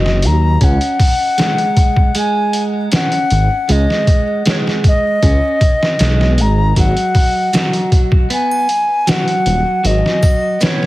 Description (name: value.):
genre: trip hop.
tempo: 78 BPM.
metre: 4/4.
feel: straight.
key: unclear.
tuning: A4 = 441 Hz.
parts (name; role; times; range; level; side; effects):
wooden flute; melody; 0.0-10.9 s; C#5 to A#5; -17 LUFS; left 1 dB; tape echo.
clean electric guitar; arpeggios; 0.0-10.9 s; F#3 to C#4; -20 LUFS; right 2 dB; vintage 12-bit sampler grit, digital delay.
dark detuned saw bass; bass; 0.0-10.0 s; D#1 to D#2; -13 LUFS; equal; none.
trip hop sampler-style drum kit; drums; 0.1-10.9 s; hi-hat, kick drum, snare drum; -14 LUFS; equal; studio reverb.
maracas and triangle; percussion; 7.5-10.8 s; none; -32 LUFS; right 2 dB; none.
room: digital ambience.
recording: heavily compressed radio sound, vinyl crackle.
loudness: -11 LUFS.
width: side -17 dB against mid.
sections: 0.0-10.9 A section.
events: none.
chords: 0.0 G#7(no3) (rootless); 0.6 C#5; 6.8 G#m7 (rootless).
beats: | 0.61 1.38 2.15 2.92 | 3.69 4.45 5.22 5.99 | 6.76 7.53 8.30 9.07 | 9.84 10.61.